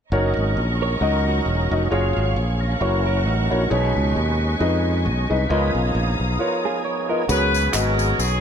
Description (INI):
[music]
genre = uptempo gospel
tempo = 134 BPM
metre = 4/4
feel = swing 56% on 8ths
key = F# major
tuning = A4 = 440 Hz
[part]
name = warm grand piano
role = accompaniment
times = 0.1-8.2 s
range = B2 to D#5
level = -24 LUFS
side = left 2 dB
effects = none
[part]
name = dark studio string section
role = sustained chords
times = 0.1-7.3 s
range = C#5 to D#6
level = -30 LUFS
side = equal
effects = none
[part]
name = tonewheel organ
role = sustained chords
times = 0.1-8.4 s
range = E3 to E#5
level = -28 LUFS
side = right 1 dB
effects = slow rotary speaker, overdrive, chorus vibrato
[part]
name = modern bright fingered electric bass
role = bass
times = 0.1-8.4 s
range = E1 to E#2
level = -21 LUFS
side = equal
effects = none
[part]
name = clean electric guitar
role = second line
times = 0.8-3.7, 6.7-7.5 s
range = D#4 to C#5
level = -30 LUFS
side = right 6 dB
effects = spring reverb, tape echo
[part]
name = mellow horn section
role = melody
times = 7.3-8.4 s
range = B3 to B4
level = -21 LUFS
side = equal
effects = none
[part]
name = tambourine and handclaps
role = percussion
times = 7.3-8.3 s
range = none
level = -27 LUFS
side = left 1 dB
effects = none
[sound]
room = light reverb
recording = none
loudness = -18 LUFS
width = side -8 dB against mid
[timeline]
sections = 0.1-7.3 A section; 7.3-8.4 B section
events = break 6.4-7.3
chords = 0.1 F#6; 1.9 F#maj9; 2.8 F#7; 3.7 B69; 5.5 C#13; 7.3 C#7sus4